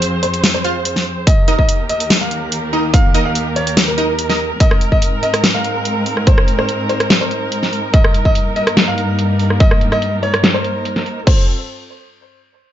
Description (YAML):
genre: heavy wobble dubstep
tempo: 144 BPM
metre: 4/4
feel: half-time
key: unclear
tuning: A4 = 445 Hz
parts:
  - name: warm baby grand piano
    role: melody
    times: 0.0-11.4 s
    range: Bb4 to F5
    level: -21 LUFS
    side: equal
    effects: ping-pong delay
  - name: dark chamber string section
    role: sustained chords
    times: 0.0-11.5 s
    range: Eb2 to C5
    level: -20 LUFS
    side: equal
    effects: sidechain pumping
  - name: dubstep drum kit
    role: drums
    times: 0.0-11.4 s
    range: crash cymbal, hi-hat, rim click, snare drum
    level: -16 LUFS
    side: equal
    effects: low-pass filter on hats, low-pass filter on snare, low-pass filter on toms, low-pass filter on cymbals
  - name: orchestra-hit-like synth stab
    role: stabs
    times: 0.6-4.4 s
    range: Eb4 to F5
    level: -20 LUFS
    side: right 1 dB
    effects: built-in reverb
  - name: electronic kick drum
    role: drums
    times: 1.3-11.4 s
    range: none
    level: -12 LUFS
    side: equal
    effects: none
room: light reverb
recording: nothing above 7.6 kHz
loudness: -13 LUFS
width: side -11 dB against mid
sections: 0.0-11.3 A section; 11.3-12.7 B section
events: filter sweep on drum 0.0-11.3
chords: 0.0 Fm; 1.3 Eb; 4.6 Abadd9; 7.9 Eb/G; 11.3 F